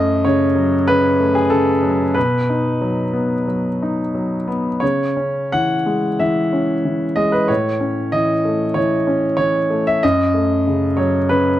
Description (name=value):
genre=neoclassical minimalist piano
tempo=91 BPM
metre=4/4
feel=uneven beats, rubato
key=unclear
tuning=A4 = 439 Hz
part: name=clear grand piano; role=solo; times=0.0-11.6 s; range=F#2 to F#5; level=-15 LUFS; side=equal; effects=none
room=small room reverb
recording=dry, close 1970s-style studio recording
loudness=-15 LUFS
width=side -13 dB against mid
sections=0.0-11.6 A section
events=none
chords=0.0 F#m; 2.2 B; 4.8 C#m; 7.5 A; 10.0 F#m